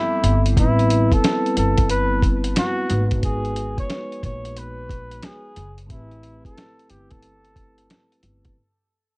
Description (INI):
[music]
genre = hip hop, jazz-hop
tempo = 90 BPM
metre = 4/4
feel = swing 64% on 16ths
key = A minor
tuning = A4 = 440 Hz
[part]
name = breathy flugelhorn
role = melody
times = 0.0-8.2 s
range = E4 to C#5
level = -25 LUFS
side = equal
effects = tape echo
[part]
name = vibraphone with soft mallets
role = accompaniment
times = 0.0-8.5 s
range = G3 to B4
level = -25 LUFS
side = equal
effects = none
[part]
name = upright bass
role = bass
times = 0.2-8.5 s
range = F#1 to A#1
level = -22 LUFS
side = equal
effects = none
[part]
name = dusty soul sampler-style drum kit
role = drums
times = 0.2-8.6 s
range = hi-hat, kick drum, snare drum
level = -21 LUFS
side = equal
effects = none
[sound]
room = little or no reverb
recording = worn, warbling old tape, cassette tape, warbly pitch drift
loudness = -17 LUFS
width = side -29 dB against mid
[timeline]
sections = 0.0-8.6 A section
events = fade-out 0.0-8.6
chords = 0.0 Am9; 2.9 G#m9; 5.9 Am9